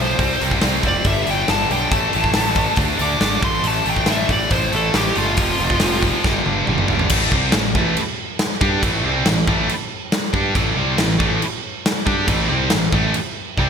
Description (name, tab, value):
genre	hard rock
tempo	139 BPM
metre	4/4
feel	straight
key	A minor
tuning	A4 = 440 Hz
part	smooth overdriven lead guitar	melody	0.0-6.0 s	F4 to D6	-22 LUFS	left 1 dB	ping-pong delay
part	heavy high-gain guitar	riff	0.0-13.7 s	F2 to G4	-20 LUFS	equal	distortion
part	fuzz picked electric bass	bass	0.0-13.7 s	F1 to G2	-23 LUFS	equal	overdrive
part	big rock drum kit	drums	0.2-13.7 s	crash cymbal, hi-hat, kick drum, snare drum, toms	-21 LUFS	equal	gated reverb
room	light reverb, small room reverb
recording	bright 1980s-style digital production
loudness	-16 LUFS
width	side -7 dB against mid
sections	0.0-7.1 A section; 7.1-13.7 B section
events	lead electric guitar solo 0.0-7.1; drum fill 6.2-7.1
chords	0.2 C5; 1.1 G; 1.9 A5; 2.8 D5; 3.4 A5; 5.4 F5; 6.2 G5; 7.1 Am